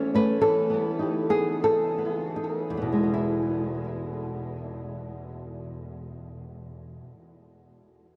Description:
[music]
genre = romantic piece for solo classical guitar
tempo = 37-57 BPM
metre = 2/4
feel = rubato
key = E major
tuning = A4 = 440 Hz
[part]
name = nylon-string guitar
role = solo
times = 0.0-7.4 s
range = E2 to C#5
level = -28 LUFS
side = equal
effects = delay
[sound]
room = wet huge ambient reverb, RT60 8.3 s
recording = dreamy mix soaked in reverb, lossy compression artefacts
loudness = -26 LUFS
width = mono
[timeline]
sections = 0.0-3.2 A section; 3.2-8.2 B section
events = slowing down 0.0-3.2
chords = 0.4 B/E; 3.2 E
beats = | 0.44 1.65 | 3.16 4.58 | 6.01 7.39

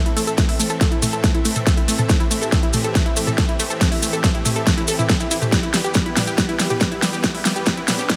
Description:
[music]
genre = uplifting trance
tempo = 140 BPM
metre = 4/4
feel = straight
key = A minor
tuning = A4 = 440 Hz
[part]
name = supersaw pad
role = sustained chords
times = 0.0-8.2 s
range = E2 to E5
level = -30 LUFS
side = equal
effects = sidechain pumping
[part]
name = unison pluck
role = arpeggios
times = 0.1-8.1 s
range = G3 to A4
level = -27 LUFS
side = equal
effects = sidechain pumping, delay
[part]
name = big-room dance drum kit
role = drums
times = 0.1-8.2 s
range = hi-hat, snare drum, toms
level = -24 LUFS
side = equal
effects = overdrive
[part]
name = maracas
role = percussion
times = 0.2-8.2 s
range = none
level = -28 LUFS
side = equal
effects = none
[part]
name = electronic kick drum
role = drums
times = 0.4-8.2 s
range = none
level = -22 LUFS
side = equal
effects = overdrive
[part]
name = riser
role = sound effects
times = 7.2-8.2 s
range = none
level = -39 LUFS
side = equal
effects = none
[sound]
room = light reverb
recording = high-pass filter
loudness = -19 LUFS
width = mono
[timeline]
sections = 0.0-8.2 A section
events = build-up 0.0-8.2; drum fill 0.0-8.2; filter sweep on synth pluck 0.0-8.2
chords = 0.0 Am; 5.5 Em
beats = | 0.38 0.81 1.24 1.67 | 2.10 2.52 2.95 3.38 | 3.81 4.24 4.67 5.09 | 5.52 5.95 6.38 6.81 | 7.24 7.67 8.10

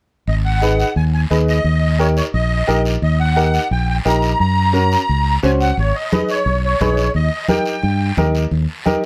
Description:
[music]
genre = latin, cumbia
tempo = 175 BPM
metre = 4/4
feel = straight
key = G# harmonic minor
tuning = A4 = 445 Hz
[part]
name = musette accordion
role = melody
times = 0.3-8.1 s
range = C#5 to A#5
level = -23 LUFS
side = equal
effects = plate reverb
[part]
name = fingered electric bass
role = bass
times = 0.3-8.7 s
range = G#1 to G2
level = -19 LUFS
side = equal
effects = none
[part]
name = guiro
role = percussion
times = 0.3-9.0 s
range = none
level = -33 LUFS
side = equal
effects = none
[part]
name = clear upright piano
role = accompaniment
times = 0.6-9.1 s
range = C#4 to B#4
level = -21 LUFS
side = equal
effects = none
[part]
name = congas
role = percussion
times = 5.8-9.0 s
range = none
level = -24 LUFS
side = equal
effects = none
[sound]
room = light reverb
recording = dark, warm production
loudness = -17 LUFS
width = mono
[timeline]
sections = 0.3-5.8 A section; 5.8-9.1 B section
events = none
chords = 0.3 G#m; 1.7 D#; 4.4 F#; 5.8 G#m; 7.1 D#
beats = | 0.28 0.62 0.97 1.31 | 1.66 2.00 2.34 2.69 | 3.03 3.37 3.71 4.06 | 4.40 4.75 5.09 5.43 | 5.78 6.12 6.46 6.80 | 7.15 7.49 7.83 8.18 | 8.52 8.86

